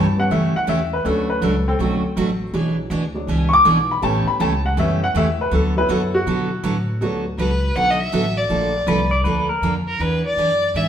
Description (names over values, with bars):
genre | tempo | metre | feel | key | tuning
country | 161 BPM | 4/4 | swing 65% on 8ths | D major | A4 = 439 Hz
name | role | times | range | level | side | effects
picked steel-string acoustic guitar | accompaniment | 0.0-10.9 s | B2 to A4 | -22 LUFS | right 2 dB | none
warm upright piano | accompaniment | 0.0-8.7 s | D3 to D6 | -20 LUFS | left 1 dB | none
upright bass | bass | 0.0-10.9 s | A1 to B2 | -24 LUFS | left 1 dB | none
rich fiddle | melody | 7.4-10.9 s | Bb4 to F#5 | -20 LUFS | left 1 dB | none
pedal steel guitar | second line | 8.9-9.7 s | Bb4 to D5 | -22 LUFS | left 1 dB | none
room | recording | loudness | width
wet stone room reverb, RT60 1.1 s | band playing live in one room | -17 LUFS | side -9 dB against mid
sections
0.0-7.0 A section; 7.0-10.9 B section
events
upright piano solo 0.0-7.0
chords
0.0 A7; 1.0 Bm7; 2.5 E7/B; 4.0 A7; 5.5 D6; 8.5 Bbmaj7; 10.0 E7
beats
0.30 0.68 | 1.05 1.42 1.79 2.17 | 2.54 2.91 3.28 3.65 | 4.03 4.40 4.77 5.14 | 5.52 5.89 6.26 6.63 | 7.01 7.38 7.75 8.12 | 8.50 8.87 9.24 9.62 | 9.99 10.36 10.74